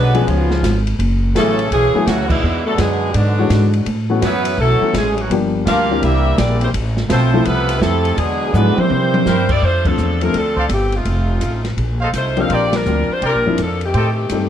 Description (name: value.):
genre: jazz, big band swing.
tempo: 167 BPM.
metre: 4/4.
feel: swing 64% on 8ths.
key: F major from 9.6 s.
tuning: A4 = 440 Hz.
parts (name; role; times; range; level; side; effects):
bright saxophone section; melody; 0.0-14.5 s; Eb3 to F5; -19 LUFS; left 1 dB; none.
clear trombone section; second line; 0.0-9.5 s; F#2 to G#4; -21 LUFS; right 2 dB; none.
upright bass; bass; 0.0-14.5 s; F1 to C3; -18 LUFS; equal; none.
clear upright piano; accompaniment; 0.1-14.5 s; E3 to C#5; -20 LUFS; left 5 dB; none.
open jazz drum kit; drums; 0.1-14.4 s; crash cymbal, hi-hat, kick drum, ride cymbal, snare drum, toms; -23 LUFS; right 1 dB; none.
mellow trumpet section; stabs; 10.6-14.1 s; A4 to G5; -23 LUFS; right 1 dB; none.
room: light reverb.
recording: dark, warm production.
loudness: -14 LUFS.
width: side -10 dB against mid.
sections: 0.0-9.6 A section; 9.6-14.5 B section.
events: band accent 2.3, 9.8, 12.7; drum fill 8.5-9.3.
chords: 0.3 C#7; 1.0 F#m11; 2.4 E13; 3.9 A69; 5.3 Gm7; 6.0 C9; 6.7 Fmaj7; 8.2 E9; 8.9 C7; 9.6 F6; 11.1 F7; 12.5 Bb69; 13.9 Am7b5.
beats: 0.27 0.63 | 0.99 1.35 1.71 2.07 | 2.43 2.79 3.15 3.51 | 3.87 4.23 4.59 4.95 | 5.31 5.67 6.03 6.39 | 6.75 7.10 7.46 7.82 | 8.18 8.54 8.90 9.26 | 9.62 9.98 10.34 10.70 | 11.06 11.42 11.78 12.14 | 12.50 12.86 13.22 13.58 | 13.94 14.30.